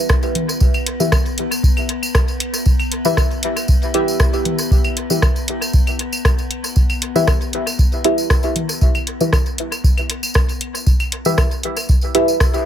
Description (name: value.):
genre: dub techno.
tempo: 117 BPM.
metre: 4/4.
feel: straight.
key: unclear.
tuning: A4 = 440 Hz.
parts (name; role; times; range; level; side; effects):
deep mellow chord stab; stabs; 0.0-12.7 s; E4 to E5; -20 LUFS; equal; chorus, phaser, sidechain pumping, dub echo.
metallic inharmonic drone; texture; 0.0-12.7 s; B3; -27 LUFS; left 3 dB; chorus, built-in reverb, sidechain pumping.
booming analog drum machine; drums; 0.1-12.5 s; hi-hat, rim click; -23 LUFS; equal; dub echo.
electronic kick drum; drums; 0.1-12.5 s; none; -16 LUFS; equal; none.
tambourine; percussion; 0.1-12.6 s; none; -27 LUFS; equal; none.
congas and claves; percussion; 0.4-11.9 s; none; -26 LUFS; left 1 dB; overdrive, sidechain pumping on perc, dub echo.
room: digital ambience.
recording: echo-heavy mix.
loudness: -15 LUFS.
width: side -10 dB against mid.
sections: 0.0-12.7 A section.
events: none.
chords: 0.0 Em.